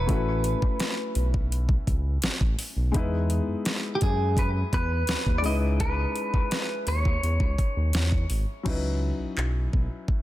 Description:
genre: contemporary R&B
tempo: 84 BPM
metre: 4/4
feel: straight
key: C# minor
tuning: A4 = 442 Hz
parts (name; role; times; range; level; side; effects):
- clean electric guitar; melody; 0.0-8.3 s; G4 to D#5; -30 LUFS; equal; spring reverb, digital delay
- felt-muted upright piano; accompaniment; 0.0-10.2 s; F#3 to B4; -33 LUFS; left 4 dB; none
- smooth gliding synth bass; bass; 0.0-10.2 s; E1 to F#2; -26 LUFS; equal; none
- smooth R&B drum kit; drums; 0.1-10.2 s; crash cymbal, handclaps, hi-hat, kick drum, snare drum; -26 LUFS; equal; none
room: digital ambience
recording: dense, heavily limited modern master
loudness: -23 LUFS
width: side -15 dB against mid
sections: 0.0-8.7 A section; 8.7-10.2 B section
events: none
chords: 0.1 A69; 2.9 Emaj7; 5.4 C#m9; 8.7 C#m11

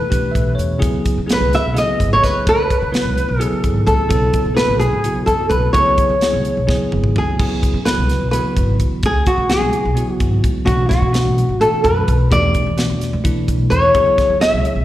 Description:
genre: electric jazz fusion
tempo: 256 BPM (eighths)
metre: 7/8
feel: straight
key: C# phrygian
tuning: A4 = 439 Hz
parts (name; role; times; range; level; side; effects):
- nylon-string guitar; melody; 0.0-14.8 s; F#4 to E5; -17 LUFS; equal; slapback echo
- bright silver concert flute; second line; 0.0-6.9, 13.7-14.8 s; G#4 to E5; -26 LUFS; right 1 dB; slapback echo
- bell-like tine electric piano; accompaniment; 0.0-14.8 s; B2 to E5; -21 LUFS; equal; medium stereo tremolo, slapback echo
- upright bass; bass; 0.0-14.8 s; G#1 to E3; -20 LUFS; equal; none
- tight funk drum kit; drums; 0.1-14.8 s; crash cymbal, hi-hat, kick drum, snare drum, toms; -19 LUFS; equal; none
room: light reverb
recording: live gig heard through the venue's PA, recital hall reverb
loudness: -14 LUFS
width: side -14 dB against mid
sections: 0.0-7.4 A section; 7.4-14.8 A section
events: tine electric piano fill 0.1-0.8; drum fill 6.7-7.4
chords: 0.0 Em7; 0.8 C#m7; 4.1 B9sus4; 5.7 C#m7; 10.7 Bm7; 12.3 Em11; 14.0 C#m7

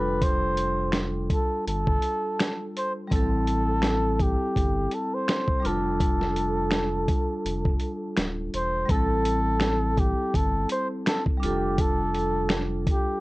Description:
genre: lo-fi hip hop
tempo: 83 BPM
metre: 4/4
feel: swing 55% on 16ths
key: A minor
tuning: A4 = 440 Hz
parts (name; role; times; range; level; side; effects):
- breathy flugelhorn; melody; 0.0-13.2 s; G4 to C5; -28 LUFS; equal; none
- vibraphone with medium hard mallets; accompaniment; 0.0-13.2 s; G3 to A4; -29 LUFS; equal; cassette tape
- warm sub bass; bass; 0.0-12.9 s; D1 to A1; -29 LUFS; equal; none
- dusty soul sampler-style drum kit; drums; 0.2-13.1 s; finger snaps, hi-hat, kick drum, snare drum; -26 LUFS; equal; vintage 12-bit sampler grit
room: moderate small room reverb, RT60 0.5 s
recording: worn, warbling old tape, cassette tape, warbly pitch drift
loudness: -23 LUFS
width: side -20 dB against mid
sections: 0.0-8.9 A section; 8.9-13.2 A section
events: none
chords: 0.0 F69; 3.1 Am7; 5.6 F69; 8.9 Am7; 11.4 F69

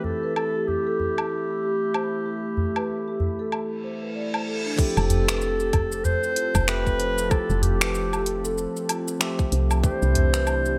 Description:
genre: organic downtempo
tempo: 95 BPM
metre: 4/4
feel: swing 59% on 16ths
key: unclear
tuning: A4 = 440 Hz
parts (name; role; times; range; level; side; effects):
- dark clarinet; melody; 0.0-10.8 s; G4 to C5; -30 LUFS; equal; delay
- barky tine electric piano; accompaniment; 0.0-10.8 s; E3 to E5; -35 LUFS; equal; sidechain pumping, delay
- warm analog pad; sustained chords; 0.0-10.8 s; C3 to B5; -36 LUFS; equal; chorus, sidechain pumping
- udu; percussion; 0.0-10.3 s; none; -29 LUFS; equal; none
- drifting glass-harmonics texture; texture; 0.0-4.8 s; E4 to E5; -46 LUFS; equal; none
- marimba with soft mallets; arpeggios; 0.2-10.8 s; D4 to D5; -34 LUFS; equal; delay
- deep house drum kit; drums; 0.4-10.8 s; crash cymbal, finger snaps, hi-hat, shaker, woodblock; -30 LUFS; equal; overdrive, gated reverb
- reverse cymbal; sound effects; 3.8-4.8 s; none; -38 LUFS; equal; none
- electronic kick drum; drums; 4.8-10.0 s; none; -25 LUFS; equal; none
- woody FM bass; bass; 5.0-10.8 s; F1 to C2; -27 LUFS; equal; sidechain pumping
room: light reverb, digital ambience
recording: bright 1980s-style digital production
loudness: -24 LUFS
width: mono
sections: 0.0-4.8 A section; 4.8-10.8 B section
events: filter sweep on marimba 0.0-4.8; filter sweep on analog synth pad 0.0-4.8; reverse cymbal 3.8-4.8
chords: 0.0 Am9; 4.8 Fmaj9; 9.8 C69

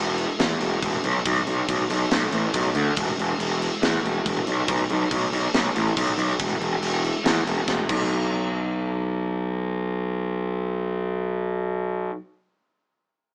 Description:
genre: heavy metal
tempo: 140 BPM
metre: 4/4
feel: straight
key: unclear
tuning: A4 = 440 Hz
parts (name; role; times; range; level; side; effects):
- fuzz picked electric bass; bass; 0.0-12.1 s; E1 to E2; -26 LUFS; equal; overdrive
- tight metal drum kit; drums; 0.2-8.0 s; crash cymbal, kick drum, snare drum; -29 LUFS; equal; none
room: light reverb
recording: band playing live in one room, small speaker sound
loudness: -24 LUFS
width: mono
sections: 0.0-8.1 A section; 8.1-11.5 B section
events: half time 0.0-8.1; drum fill 7.7-8.1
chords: none

